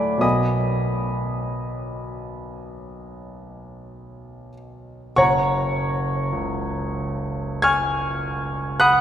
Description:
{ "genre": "classical, impressionist solo piano", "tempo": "44-54 BPM", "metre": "4/4", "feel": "rubato", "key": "F# major", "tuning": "A4 = 438 Hz", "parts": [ { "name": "clear concert grand piano", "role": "solo", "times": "0.0-9.0 s", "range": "F#1 to G#6", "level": "-20 LUFS", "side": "equal", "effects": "none" } ], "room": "wet cathedral reverb, RT60 4.4 s", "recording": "recorded in a church or concert hall", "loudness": "-20 LUFS", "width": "side -10 dB against mid", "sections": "0.0-5.2 A section; 5.2-9.0 B section", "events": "none", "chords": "0.2 Bmaj7; 5.2 F#maj9", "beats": "| 0.23 1.47 2.65 3.87 | 5.18 6.35 7.64 8.80" }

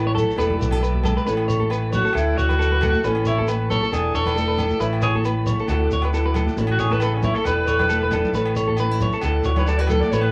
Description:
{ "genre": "highlife guitar band", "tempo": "136 BPM", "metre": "4/4", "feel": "swing 54% on 16ths", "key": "A major", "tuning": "A4 = 443 Hz", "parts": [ { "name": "nylon-string guitar", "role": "accompaniment", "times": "0.0-10.3 s", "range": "A2 to A4", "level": "-28 LUFS", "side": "equal", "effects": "none" }, { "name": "percussive tonewheel organ", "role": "sustained chords", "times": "0.0-10.3 s", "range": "C#5 to D6", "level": "-40 LUFS", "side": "equal", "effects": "slow rotary speaker" }, { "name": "clean electric guitar", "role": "arpeggios", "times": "0.0-10.3 s", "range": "A4 to C#5", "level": "-27 LUFS", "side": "equal", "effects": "none" }, { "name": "fingered electric bass", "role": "bass", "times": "0.0-10.3 s", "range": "E1 to D2", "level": "-25 LUFS", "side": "equal", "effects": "none" }, { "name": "congas", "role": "percussion", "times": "0.2-10.1 s", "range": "none", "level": "-32 LUFS", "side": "equal", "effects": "none" }, { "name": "shekere", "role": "percussion", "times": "0.2-10.2 s", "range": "none", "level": "-34 LUFS", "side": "equal", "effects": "none" }, { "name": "agogo bells", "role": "percussion", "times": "0.4-10.3 s", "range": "none", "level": "-37 LUFS", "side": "equal", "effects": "none" }, { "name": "raspy alto saxophone", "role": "melody", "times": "1.9-10.3 s", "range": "C#4 to D5", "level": "-26 LUFS", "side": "equal", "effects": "none" } ], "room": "moderate small room ambience, RT60 0.5 s", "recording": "band playing live in one room", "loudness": "-21 LUFS", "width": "mono", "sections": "0.0-1.3 A section; 1.3-10.3 B section", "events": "alto saxophone solo 1.3-10.3; drum fill 8.0-8.3", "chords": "0.4 E7sus4; 1.3 Aadd9; 2.1 Dadd9; 3.0 Aadd9; 3.9 E7sus4; 4.8 Aadd9; 5.7 Dadd9; 6.6 Aadd9; 7.5 E7sus4; 8.3 Aadd9; 9.2 Dadd9", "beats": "0.38 0.82 | 1.26 1.71 2.15 2.59 | 3.03 3.48 3.92 4.36 | 4.80 5.25 5.69 6.13 | 6.57 7.01 7.46 7.90 | 8.34 8.78 9.22 9.67 | 10.11" }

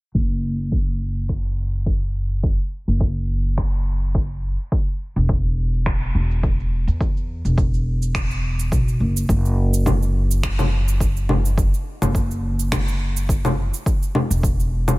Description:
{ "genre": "organic downtempo", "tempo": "105 BPM", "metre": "4/4", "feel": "swing 55% on 16ths", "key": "unclear", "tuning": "A4 = 442 Hz", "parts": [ { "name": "upright bass", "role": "bass", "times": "0.1-15.0 s", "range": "E1 to E2", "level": "-20 LUFS", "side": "equal", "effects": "none" }, { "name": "electronic kick drum", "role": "drums", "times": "0.1-14.6 s", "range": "none", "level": "-22 LUFS", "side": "equal", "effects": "none" }, { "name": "electronic shaker, finger snaps and congas", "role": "drums", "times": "0.2-15.0 s", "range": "none", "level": "-25 LUFS", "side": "left 1 dB", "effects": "none" } ], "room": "little or no reverb", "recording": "low-pass filter", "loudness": "-18 LUFS", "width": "side -20 dB against mid", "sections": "0.1-9.3 A section; 9.3-15.0 B section", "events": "filter sweep on upright bass 0.1-9.3; filter sweep 0.1-9.3", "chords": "none", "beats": "| 0.15 0.72 1.29 1.86 | 2.44 3.01 3.58 4.15 | 4.72 5.29 5.86 6.43 | 7.01 7.58 8.15 8.72 | 9.29 9.86 10.44 11.01 | 11.58 12.15 12.72 13.29 | 13.86 14.44" }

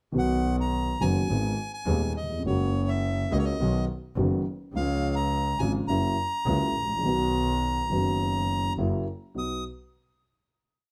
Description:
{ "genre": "tango", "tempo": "104 BPM", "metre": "4/4", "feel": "rubato", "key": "B major", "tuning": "A4 = 444 Hz", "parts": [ { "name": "dark baby grand piano", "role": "accompaniment", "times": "0.1-9.6 s", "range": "D#1 to G#4", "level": "-31 LUFS", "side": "equal", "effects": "none" }, { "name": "clear double bass", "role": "bass", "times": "0.1-9.6 s", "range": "F#1 to D#2", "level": "-31 LUFS", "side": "equal", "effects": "none" }, { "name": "bandoneon", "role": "melody", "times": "0.2-9.6 s", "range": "C#5 to D#6", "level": "-33 LUFS", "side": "equal", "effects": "none" } ], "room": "light reverb", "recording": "none", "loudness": "-27 LUFS", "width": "mono", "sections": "0.1-9.4 A section; 9.4-10.9 final chord", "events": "none", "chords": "0.1 B; 1.3 G#m; 2.4 F#add9; 3.6 B; 4.7 C#; 5.9 F#7; 7.0 B; 8.8 F#7; 9.4 B", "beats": "| 0.13 0.71 1.29 1.86 | 2.44 3.02 3.59 4.17 | 4.74 5.31 5.89 6.46 | 7.04 7.62 8.20 8.78 | 9.36" }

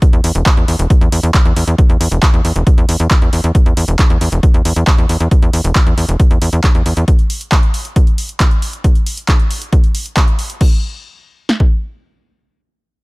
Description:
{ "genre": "uplifting trance", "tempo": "136 BPM", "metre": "4/4", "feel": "straight", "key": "unclear", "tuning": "A4 = 440 Hz", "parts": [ { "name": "punchy analog drum machine", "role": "drums", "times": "0.0-11.7 s", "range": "kick drum, snare drum", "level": "-11 LUFS", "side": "equal", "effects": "none" }, { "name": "punchy analog drum machine", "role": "drums", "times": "0.0-10.7 s", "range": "crash cymbal, handclaps, hi-hat", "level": "-20 LUFS", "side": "right 1 dB", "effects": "sidechain pumping on hats, sidechain pumping on cymbals" }, { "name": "tight sequencer bass", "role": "bass", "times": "0.1-7.0 s", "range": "E1 to E2", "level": "-14 LUFS", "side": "equal", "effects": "sidechain pumping" } ], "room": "digital ambience", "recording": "none", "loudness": "-10 LUFS", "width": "side -26 dB against mid", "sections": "0.0-10.6 A section; 10.6-13.0 B section", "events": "none", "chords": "none", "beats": "| 0.02 0.46 0.90 1.34 | 1.78 2.23 2.67 3.11 | 3.55 3.99 4.43 4.87 | 5.31 5.75 6.20 6.64 | 7.08 7.52 7.96 8.40 | 8.84 9.28 9.72 10.17 | 10.61 11.05 11.49" }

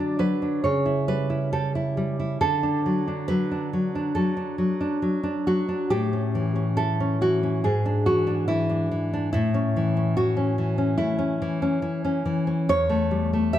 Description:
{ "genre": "romantic piece for solo classical guitar", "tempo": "69 BPM", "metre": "4/4", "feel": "rubato", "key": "unclear", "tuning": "A4 = 440 Hz", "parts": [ { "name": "nylon-string guitar", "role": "solo", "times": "0.0-13.6 s", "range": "E2 to E5", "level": "-22 LUFS", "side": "equal", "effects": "none" } ], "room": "moderate concert hall reverb, RT60 2.2 s", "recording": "none", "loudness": "-22 LUFS", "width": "side -12 dB against mid", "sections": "0.0-13.6 A section", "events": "none", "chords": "0.0 D; 0.6 A7/C#; 2.4 D; 5.9 A; 7.6 E7/G#; 9.3 A; 12.7 A7/E", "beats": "0.65 1.52 | 2.40 3.28 4.16 5.02 | 5.90 6.77 7.64 8.49 | 9.34 10.17 11.00 11.84 | 12.70 13.56" }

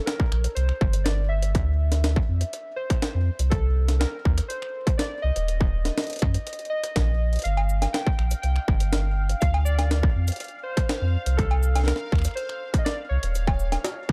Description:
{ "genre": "IDM", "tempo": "122 BPM", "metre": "4/4", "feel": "straight", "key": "G minor", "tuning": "A4 = 440 Hz", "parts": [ { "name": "warbly lo-fi synth keys", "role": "melody", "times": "0.0-14.1 s", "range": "A4 to G5", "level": "-35 LUFS", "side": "equal", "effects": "chorus, tape echo" }, { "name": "jungle sampler-style drum kit", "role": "drums", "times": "0.1-14.1 s", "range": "cabasa, cowbell, finger snaps, hi-hat, snare drum", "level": "-32 LUFS", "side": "equal", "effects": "none" }, { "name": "electronic kick drum", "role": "drums", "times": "0.2-14.1 s", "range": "none", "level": "-26 LUFS", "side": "equal", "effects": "distortion" }, { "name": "warm sub bass", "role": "bass", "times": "0.3-14.1 s", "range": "Eb1 to Gb2", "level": "-25 LUFS", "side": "equal", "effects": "none" }, { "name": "bubbling stepped-filter texture", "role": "texture", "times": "7.5-14.1 s", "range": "F5", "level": "-42 LUFS", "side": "equal", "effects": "chorus, built-in reverb, sidechain pumping" } ], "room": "digital ambience", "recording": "dark, warm production", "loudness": "-24 LUFS", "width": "mono", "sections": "0.0-14.1 A section", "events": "none", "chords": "0.0 Gm; 1.5 Dm9; 3.5 Cm7; 5.5 Ebm; 7.5 G7(no3); 9.4 Dm7; 11.4 Cm7; 13.4 Eb7sus2", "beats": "0.07 0.56 1.06 | 1.55 2.04 2.53 3.02 | 3.52 4.01 4.50 4.99 | 5.48 5.97 6.47 6.96 | 7.45 7.94 8.43 8.93 | 9.42 9.91 10.40 10.89 | 11.38 11.88 12.37 12.86 | 13.35 13.84" }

